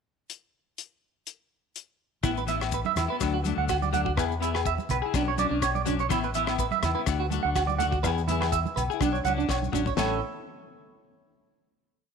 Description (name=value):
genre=highlife guitar band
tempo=124 BPM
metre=4/4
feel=straight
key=A major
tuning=A4 = 440 Hz
part: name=damped 70s drum kit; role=drums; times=0.3-10.1 s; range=crash cymbal, hi-hat, kick drum, rim click, snare drum, toms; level=-33 LUFS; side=left 4 dB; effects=none
part: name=clean electric guitar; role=accompaniment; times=2.2-10.2 s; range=E3 to G#4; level=-32 LUFS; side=left 13 dB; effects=lush chorus
part: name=clean electric guitar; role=arpeggios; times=2.2-10.2 s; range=D4 to F#5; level=-28 LUFS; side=right 10 dB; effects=slapback echo
part: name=deep dub fingered electric bass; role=bass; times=2.2-10.2 s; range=A1 to E2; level=-30 LUFS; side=left 1 dB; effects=none
part: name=agogo bells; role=percussion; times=2.2-10.1 s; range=none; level=-36 LUFS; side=left 10 dB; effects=none
part: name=congas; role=percussion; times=2.2-10.2 s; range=none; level=-37 LUFS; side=right 9 dB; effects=none
part: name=maracas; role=percussion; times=2.2-10.2 s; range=none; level=-42 LUFS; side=left 17 dB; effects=none
room=moderate plate reverb, RT60 2.0 s, small room reverb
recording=1960s-style stereo with parts hard left and right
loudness=-24 LUFS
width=side -6 dB against mid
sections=0.3-2.2 pickup bar; 2.2-10.0 groove; 10.0-11.9 final chord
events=drum fill 9.5-10.0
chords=0.3 N.C.; 2.2 Asus2; 3.2 D; 4.2 E; 5.1 Bmadd9; 6.1 Asus2; 7.1 D; 8.0 E; 9.0 Bmadd9; 10.0 A